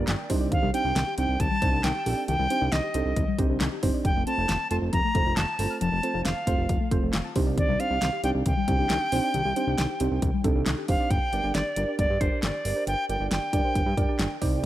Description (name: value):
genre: synth-pop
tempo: 136 BPM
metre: 4/4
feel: straight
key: G minor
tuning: A4 = 443 Hz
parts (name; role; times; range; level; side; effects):
- bright reedy silver concert flute; melody; 0.0-14.4 s; C5 to Bb5; -28 LUFS; right 1 dB; tape echo
- muted felt-like synth keys; accompaniment; 0.0-14.7 s; A3 to G5; -31 LUFS; right 4 dB; chorus
- soft round pluck; arpeggios; 0.0-11.1, 14.6-14.7 s; Eb3 to F6; -33 LUFS; left 7 dB; chorus, tape echo
- fat analog bass; bass; 0.0-14.7 s; F1 to G2; -29 LUFS; equal; none
- pop drum kit; drums; 0.1-14.7 s; handclaps, hi-hat, kick drum, snare drum; -27 LUFS; equal; none
room: light reverb, digital ambience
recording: none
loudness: -23 LUFS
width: side -14 dB against mid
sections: 0.0-11.1 A section; 11.1-14.7 B section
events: synth keys fill 0.0-0.5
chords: 0.3 Cmadd9; 4.0 F; 7.4 Cmadd9; 11.1 Gm